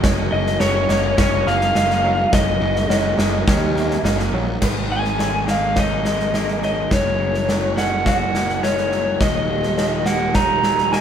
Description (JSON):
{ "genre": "post-rock", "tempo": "105 BPM", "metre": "4/4", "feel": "straight", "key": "unclear", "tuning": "A4 = 441 Hz", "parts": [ { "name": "clear studio string section", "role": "sustained chords", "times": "0.0-11.0 s", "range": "Eb3 to Bb5", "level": "-33 LUFS", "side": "right 1 dB", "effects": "none" }, { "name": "felt-muted upright piano", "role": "arpeggios", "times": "0.0-11.0 s", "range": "Cb5 to Eb5", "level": "-32 LUFS", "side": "right 8 dB", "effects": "none" }, { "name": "twangy electric guitar", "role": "arpeggios", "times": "0.0-11.0 s", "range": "Eb2 to Gb4", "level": "-29 LUFS", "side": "left 2 dB", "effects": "spring reverb" }, { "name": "fuzz picked electric bass", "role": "bass", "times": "0.0-11.0 s", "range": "Eb1 to Eb2", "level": "-23 LUFS", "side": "equal", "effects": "overdrive" }, { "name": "huge arena drum kit", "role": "drums", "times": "0.0-11.0 s", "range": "crash cymbal, kick drum, snare drum", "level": "-20 LUFS", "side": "equal", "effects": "none" }, { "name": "lead guitar through a small cranked amp", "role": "melody", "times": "0.3-11.0 s", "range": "Db5 to Bb5", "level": "-20 LUFS", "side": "equal", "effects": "overdrive" } ], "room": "light reverb", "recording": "band playing live in one room", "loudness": "-16 LUFS", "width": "side -8 dB against mid", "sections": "0.0-4.6 A section; 4.6-11.0 B section", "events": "none", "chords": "0.0 Gb6; 4.6 Abmadd9; 6.9 Gb; 9.2 Ebm7", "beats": "| 0.03 0.61 1.18 1.75 | 2.33 2.90 3.47 4.04 | 4.62 5.19 5.76 6.34 | 6.91 7.48 8.06 8.63 | 9.20 9.77 10.35 10.92" }